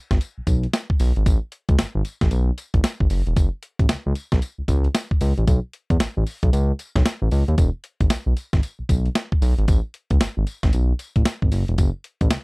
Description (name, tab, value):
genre	R&B, new jack swing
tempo	114 BPM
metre	4/4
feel	swing 63% on 16ths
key	E major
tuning	A4 = 441 Hz
part	smooth synth bass	bass	0.1-12.4 s	E1 to E2	-20 LUFS	equal	none
part	boom bap sampler-style drum kit	drums	0.1-12.4 s	hi-hat, kick drum, snare drum, tambourine	-20 LUFS	equal	none
room	little or no reverb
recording	dry, close 1970s-style studio recording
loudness	-19 LUFS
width	side -31 dB against mid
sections	0.0-12.4 A section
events	none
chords	none